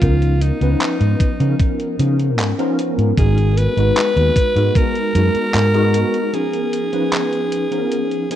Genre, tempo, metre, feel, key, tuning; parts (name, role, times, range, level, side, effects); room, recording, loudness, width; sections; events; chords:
vaporwave; 76 BPM; 4/4; straight; A4 = 437 Hz
raspy alto saxophone; melody; 0.0-8.4 s; D#4 to B4; -21 LUFS; equal; tape echo
tine electric piano; accompaniment; 0.0-8.4 s; E#3 to B4; -20 LUFS; left 1 dB; fast stereo tremolo, ensemble chorus, vintage 12-bit sampler grit, analog delay
fretless electric bass; bass; 0.0-6.0 s; G#1 to C#3; -16 LUFS; equal; tube saturation
detuned 8-bit digital drum machine; drums; 0.0-8.4 s; handclaps, hi-hat; -25 LUFS; equal
electronic kick drum; drums; 0.0-4.9 s; -16 LUFS; equal
moderate lush hall reverb, RT60 2.1 s; rough home demo mix, cassette tape; -15 LUFS; side -11 dB against mid
0.0-8.4 A section
break 6.3-8.4
0.0 C#13; 3.2 G#m9; 6.3 C#13